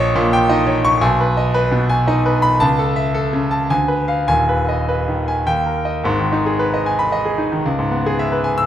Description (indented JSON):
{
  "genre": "classical, virtuoso piano study",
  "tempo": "99-116 BPM",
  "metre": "3/4",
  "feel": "rubato",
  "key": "G# minor",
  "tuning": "A4 = 440 Hz",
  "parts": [
    { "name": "bright concert grand piano", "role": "solo", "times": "0.0-8.7 s", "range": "D#1 to E6", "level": "-15 LUFS", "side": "equal", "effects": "none" }
  ],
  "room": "moderate recital hall reverb, RT60 1.6 s",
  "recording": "minimal, uncompressed stereo recording",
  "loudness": "-15 LUFS",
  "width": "side -10 dB against mid",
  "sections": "0.0-6.0 A section; 6.0-8.7 B section",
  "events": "none",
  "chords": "0.0 D#7/A#; 1.0 G#m/B; 2.6 A/C#; 3.7 Ddim7; 4.3 G#m/D#; 5.5 D#; 6.0 G#m; 7.6 C#m7"
}